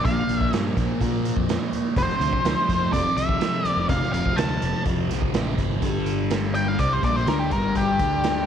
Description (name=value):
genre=psychedelic rock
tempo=125 BPM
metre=4/4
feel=straight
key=G dorian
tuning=A4 = 443 Hz
part: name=octave-fuzz lead guitar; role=melody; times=0.0-8.5 s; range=G4 to A5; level=-25 LUFS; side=equal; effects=distortion, slapback echo
part: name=thick fuzz guitar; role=riff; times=0.0-8.5 s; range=F2 to D4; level=-26 LUFS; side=left 2 dB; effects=distortion, phaser
part: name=fuzz fingered electric bass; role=bass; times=0.0-8.4 s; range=F1 to Bb2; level=-27 LUFS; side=equal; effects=overdrive
part: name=raw garage drum kit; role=drums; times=0.1-8.4 s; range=hi-hat, kick drum, snare drum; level=-27 LUFS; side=right 2 dB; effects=none
part: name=congas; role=percussion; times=0.2-5.7 s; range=none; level=-38 LUFS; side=left 8 dB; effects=none
part: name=tanpura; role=drone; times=5.8-8.5 s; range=G2 to G3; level=-34 LUFS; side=left 1 dB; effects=none
room=moderate spring reverb, RT60 1.9 s, small room ambience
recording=1960s-style stereo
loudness=-20 LUFS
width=side -8 dB against mid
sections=0.0-5.8 A section; 5.8-8.5 B section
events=lead electric guitar solo 5.8-8.5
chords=0.0 Bb5; 2.0 F5; 5.8 Gm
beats=| 0.05 0.53 1.01 1.49 | 1.97 2.45 2.93 3.42 | 3.90 4.38 4.86 5.34 | 5.82 6.31 6.79 7.27 | 7.76 8.24